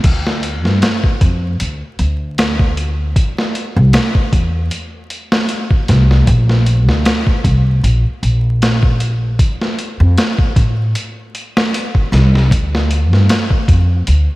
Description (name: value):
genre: trip hop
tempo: 77 BPM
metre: 4/4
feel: swing 55% on 16ths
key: unclear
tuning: A4 = 440 Hz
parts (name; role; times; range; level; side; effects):
- upright bass; bass; 0.0-14.3 s; Bb1 to A2; -13 LUFS; equal; none
- boom bap sampler-style drum kit; drums; 0.0-14.3 s; crash cymbal, hi-hat, kick drum, snare drum; -15 LUFS; equal; vintage 12-bit sampler grit
room: light reverb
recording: vinyl crackle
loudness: -12 LUFS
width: side -19 dB against mid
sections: 0.0-14.4 A section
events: none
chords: none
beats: | 0.05 0.82 1.60 2.38 | 3.16 3.94 4.72 5.50 | 6.28 7.06 7.84 8.62 | 9.40 10.18 10.96 11.73 | 12.51 13.29 14.07